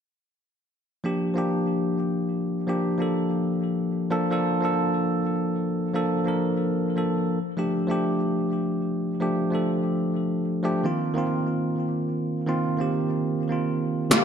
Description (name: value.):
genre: future bass.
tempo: 147 BPM.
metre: 4/4.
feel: swing 54% on 16ths, half-time.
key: unclear.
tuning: A4 = 441 Hz.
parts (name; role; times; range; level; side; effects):
bell-like tine electric piano; accompaniment; 1.0-14.2 s; D3 to Bb4; -23 LUFS; equal; ping-pong delay.
airy breathy pad; sustained chords; 14.1-14.2 s; G4 to F5; -28 LUFS; left 7 dB; chorus.
dense compressed supersaw; riff; 14.1-14.2 s; Bb3 to F5; -20 LUFS; equal; low-pass filter.
big-room dance drum kit; drums; 14.1-14.2 s; hi-hat, snare drum; -18 LUFS; equal; none.
riser; sound effects; 14.2 s; none; -34 LUFS; equal; none.
room: moderate lush hall reverb, RT60 1.7 s.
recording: dark, warm production.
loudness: -23 LUFS.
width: side -7 dB against mid.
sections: 1.1-14.1 A section.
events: none.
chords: 1.1 Gm7; 4.1 Bbmaj7; 7.4 F69; 10.8 F7sus4.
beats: | 1.05 1.46 1.87 2.27 | 2.68 3.09 3.50 3.91 | 4.32 4.72 5.13 5.54 | 5.95 6.36 6.76 7.17 | 7.58 7.99 8.40 8.81 | 9.21 9.62 10.03 10.44 | 10.85 11.26 11.66 12.07 | 12.48 12.89 13.30 13.70 | 14.11.